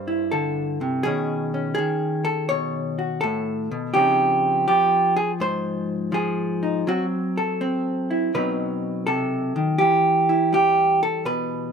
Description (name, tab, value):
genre	solo jazz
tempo	82 BPM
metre	4/4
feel	swing 67% on 8ths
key	unclear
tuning	A4 = 440 Hz
part	vintage hollow-body jazz guitar	solo	0.0-11.7 s	G2 to C#5	-20 LUFS	right 1 dB	none
room	light reverb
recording	close, detailed microphones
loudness	-20 LUFS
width	side -6 dB against mid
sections	0.0-11.7 A section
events	none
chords	0.0 C69; 1.0 B9; 4.0 Dbmaj9; 6.9 F#m7b5; 8.3 B7b9; 9.8 Em